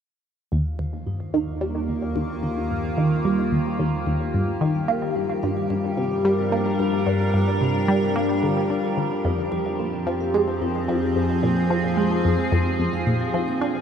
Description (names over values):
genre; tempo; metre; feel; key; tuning
ambient, sequencer-driven space music; 110 BPM; 4/4; straight; F dorian; A4 = 440 Hz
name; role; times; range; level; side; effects
evolving wavetable pad; sustained chords; 1.5-13.8 s; Eb3 to Bb4; -24 LUFS; left 1 dB; chorus, built-in reverb, phaser
vibraphone with medium hard mallets; arpeggios; 0.5-13.8 s; F3 to F5; -33 LUFS; right 2 dB; auto-pan, analog delay
resonant blip pluck; riff; 0.5-13.8 s; Eb2 to D4; -24 LUFS; equal; phaser, analog delay
analog drone; bass; 1.3-13.8 s; Eb2 to G2; -30 LUFS; equal; chorus
room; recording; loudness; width
wet huge ambient reverb, RT60 7.5 s; in a vast, echoing space; -20 LUFS; side -8 dB against mid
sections
0.5-13.8 A section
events
fade-in on vibraphone 0.5-13.8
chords
0.5 Eb; 4.9 Gm7; 9.2 Fm7